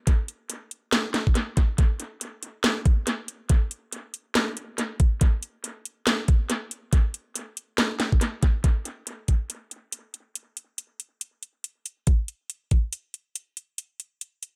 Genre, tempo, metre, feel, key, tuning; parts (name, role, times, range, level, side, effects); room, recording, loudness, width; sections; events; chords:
dubstep; 140 BPM; 4/4; swing 59% on 16ths, half-time
electronic kick drum; drums; 0.1-9.4, 12.1-12.8 s; -22 LUFS; equal
garage drum kit; drums; 0.1-14.5 s; hi-hat, snare drum; -29 LUFS; equal; analog delay
light reverb; echo-heavy mix; -25 LUFS; mono
0.0-8.6 A section; 8.6-14.6 B section